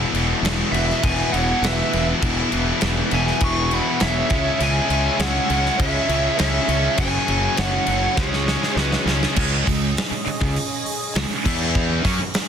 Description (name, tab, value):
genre	hard rock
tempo	101 BPM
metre	4/4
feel	straight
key	C# minor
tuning	A4 = 439 Hz
part	lush unison pad	sustained chords	0.0-12.5 s	E3 to E5	-33 LUFS	equal	none
part	cranked stack guitar	riff	0.0-12.2 s	E2 to E4	-27 LUFS	left 12 dB	overdrive
part	high-gain distorted guitar	riff	0.0-12.2 s	E2 to E4	-28 LUFS	right 13 dB	distortion
part	high-gain distorted guitar	riff	0.0-12.2 s	F#2 to E4	-29 LUFS	equal	distortion
part	fuzz fingered electric bass	bass	0.0-12.2 s	E1 to F#2	-24 LUFS	equal	overdrive
part	big rock drum kit	drums	0.1-12.5 s	crash cymbal, hi-hat, kick drum, snare drum	-23 LUFS	equal	soft clipping on snare
part	bluesy overdriven lead guitar	melody	0.7-9.0 s	C#5 to C#6	-24 LUFS	equal	distortion, digital delay
part	bluesy overdriven lead guitar	second line	0.7-9.0 s	G#4 to G#5	-30 LUFS	right 6 dB	distortion
room	light reverb, studio ambience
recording	dense, heavily limited modern master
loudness	-18 LUFS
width	side -8 dB against mid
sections	0.0-9.4 A section; 9.4-12.5 B section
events	drum fill 8.2-9.4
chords	0.0 E; 4.3 C#m; 7.0 F#m; 8.2 C#m; 9.4 C#5; 11.5 E5